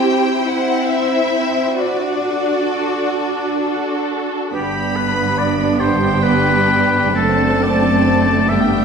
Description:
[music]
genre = classical, slow romantic movement for symphony orchestra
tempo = 41-49 BPM (dotted quarters)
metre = 6/8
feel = rubato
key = G major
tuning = A4 = 440 Hz
[part]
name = clear studio violin section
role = melody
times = 0.0-8.8 s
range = D5 to B5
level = -23 LUFS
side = left 5 dB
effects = none
[part]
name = warm studio violin section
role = second line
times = 0.0-8.8 s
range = D4 to C5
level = -22 LUFS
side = left 1 dB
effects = none
[part]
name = rich studio viola section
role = accompaniment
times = 0.0-8.8 s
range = G3 to D4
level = -20 LUFS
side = right 1 dB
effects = none
[part]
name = clear studio cello section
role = bass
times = 0.0-8.8 s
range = F#2 to G4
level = -22 LUFS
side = right 2 dB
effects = none
[part]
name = warm oboe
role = second line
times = 4.5-8.8 s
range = G4 to E5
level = -18 LUFS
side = left 1 dB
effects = none
[part]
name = clear studio double bass section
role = bass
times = 4.5-8.8 s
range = F#1 to G1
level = -22 LUFS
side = right 4 dB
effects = none
[sound]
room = wet scoring stage reverb, RT60 1.7 s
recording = heard from further back in the room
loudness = -14 LUFS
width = side -6 dB against mid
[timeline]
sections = 0.0-4.5 A section; 4.5-8.8 B section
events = none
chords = 0.0 C; 1.8 D; 4.5 G; 7.2 D7/F#

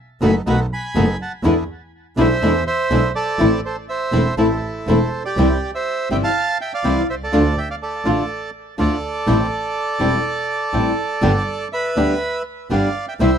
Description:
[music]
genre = tango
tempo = 123 BPM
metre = 4/4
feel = rubato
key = A harmonic minor, C major from 5.4 s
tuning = A4 = 440 Hz
[part]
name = bandoneon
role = melody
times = 0.2-13.4 s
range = E4 to B5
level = -22 LUFS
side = right 3 dB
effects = tape echo
[part]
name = flamenco guitar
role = accompaniment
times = 0.2-13.3 s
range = B2 to G4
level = -18 LUFS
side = left 2 dB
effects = none
[part]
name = bandoneon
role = stabs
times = 0.2-13.4 s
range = A3 to A4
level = -27 LUFS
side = right 5 dB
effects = none
[part]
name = clear double bass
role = bass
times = 0.2-13.4 s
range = E1 to E2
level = -21 LUFS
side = right 1 dB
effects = none
[sound]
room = little or no reverb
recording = dry, close 1970s-style studio recording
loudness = -17 LUFS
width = side -8 dB against mid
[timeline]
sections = 0.0-5.4 A section; 5.4-13.4 B section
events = none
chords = 0.0 B7; 1.4 E7; 3.4 Am; 5.4 C; 7.3 Dm; 9.3 Am7; 11.2 G

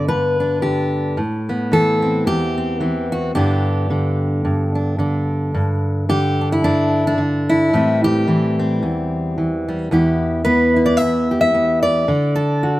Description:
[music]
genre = folk, solo fingerstyle acoustic guitar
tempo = 110 BPM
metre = 4/4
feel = swing 56% on 8ths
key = G major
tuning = A4 = 435 Hz
[part]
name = fingerpicked steel-string acoustic guitar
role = solo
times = 0.0-12.8 s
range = E2 to E5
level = -16 LUFS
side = equal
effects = none
[sound]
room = little or no reverb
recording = recorded outdoors, with no room sound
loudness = -16 LUFS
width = side -16 dB against mid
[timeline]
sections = 0.0-5.5 A section; 5.5-12.8 B section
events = none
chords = 0.0 G; 1.2 Amadd9; 3.4 G; 5.5 G5; 7.7 Am7; 9.9 Em; 12.1 D

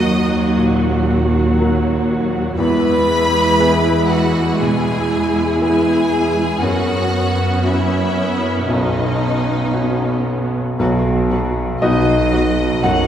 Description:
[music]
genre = cinematic, emotional film score for orchestra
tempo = 59 BPM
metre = 4/4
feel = rubato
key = B major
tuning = A4 = 439 Hz
[part]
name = clear studio violin section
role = melody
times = 0.0-12.9 s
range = B4 to D#6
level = -24 LUFS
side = left 1 dB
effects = none
[part]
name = rich studio violin section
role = second line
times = 0.0-13.1 s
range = D#4 to F#5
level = -22 LUFS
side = left 2 dB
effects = none
[part]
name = clear baby grand piano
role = accompaniment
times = 0.0-13.1 s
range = B1 to F#5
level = -19 LUFS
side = left 1 dB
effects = none
[part]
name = rich studio viola section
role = accompaniment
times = 0.0-12.9 s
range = F#3 to F#4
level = -20 LUFS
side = right 2 dB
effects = none
[part]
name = rich studio cello section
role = bass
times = 0.0-13.1 s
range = D#2 to B2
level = -20 LUFS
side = right 1 dB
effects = none
[part]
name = rich studio double bass section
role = bass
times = 10.8-13.1 s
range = B1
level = -21 LUFS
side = right 2 dB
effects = none
[sound]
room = wet scoring stage reverb, RT60 2.1 s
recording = heard from further back in the room, faint mains hum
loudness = -14 LUFS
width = side -9 dB against mid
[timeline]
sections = 0.0-10.8 A section; 10.8-13.1 A section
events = none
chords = 0.0 D#m; 2.6 E; 6.6 F#sus4; 8.7 Badd9; 10.8 B

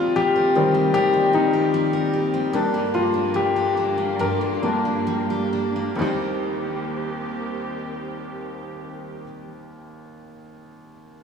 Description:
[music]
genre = pop ballad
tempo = 64-77 BPM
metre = 4/4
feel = straight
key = Eb major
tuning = A4 = 440 Hz
[part]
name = bright concert grand piano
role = accompaniment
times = 0.0-11.2 s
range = Eb2 to Bb4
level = -22 LUFS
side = left 3 dB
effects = none
[part]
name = dark studio string section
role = sustained chords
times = 0.0-9.2 s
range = Eb2 to G4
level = -31 LUFS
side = equal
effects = none
[part]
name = picked steel-string acoustic guitar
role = arpeggios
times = 0.0-9.6 s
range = G2 to C5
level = -28 LUFS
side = right 4 dB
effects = diffuse ambient delay
[sound]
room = wet lush hall reverb, RT60 2.8 s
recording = dreamy mix soaked in reverb, studio ambience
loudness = -19 LUFS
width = side -6 dB against mid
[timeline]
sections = 0.0-6.0 A section; 6.0-9.7 B section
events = slowing down 0.0-6.0; grand piano solo 0.0-6.0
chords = 0.0 Eb6; 2.5 Gm; 6.0 Eb6

